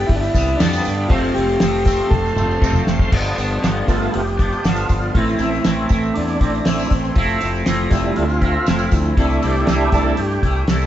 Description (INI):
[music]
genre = psychedelic rock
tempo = 119 BPM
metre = 4/4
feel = straight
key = unclear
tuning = A4 = 442 Hz
[part]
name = combo organ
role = melody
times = 0.0-2.8 s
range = D4 to A4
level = -21 LUFS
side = left 1 dB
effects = none
[part]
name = overdriven tonewheel organ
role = sustained chords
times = 0.0-10.9 s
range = G3 to C6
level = -23 LUFS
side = right 2 dB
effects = chorus vibrato, slow rotary speaker
[part]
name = twangy electric guitar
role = riff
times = 0.0-10.9 s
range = F2 to E4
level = -21 LUFS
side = equal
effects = rotary speaker
[part]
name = fuzz fingered electric bass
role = bass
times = 0.0-10.9 s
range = F1 to G2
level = -22 LUFS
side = equal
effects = overdrive
[part]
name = cloth-damped thuddy drum kit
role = drums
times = 0.1-10.8 s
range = crash cymbal, hi-hat, kick drum, snare drum, toms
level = -19 LUFS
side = equal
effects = none
[part]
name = tambourine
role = percussion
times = 0.2-10.9 s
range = none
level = -38 LUFS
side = right 8 dB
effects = none
[sound]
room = light reverb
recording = band playing live in one room, nothing above 7.8 kHz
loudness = -15 LUFS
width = side -12 dB against mid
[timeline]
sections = 0.0-3.1 A section; 3.1-10.9 B section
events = drum fill 2.1-3.1; tonewheel organ solo 3.1-10.9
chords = 0.0 G; 1.1 F; 3.1 G7; 5.2 Am; 7.2 Fmaj7; 9.2 C6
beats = 0.10 0.60 | 1.11 1.61 2.12 2.62 | 3.13 3.64 4.14 4.65 | 5.15 5.66 6.16 6.67 | 7.17 7.67 8.18 8.68 | 9.18 9.69 10.19 10.69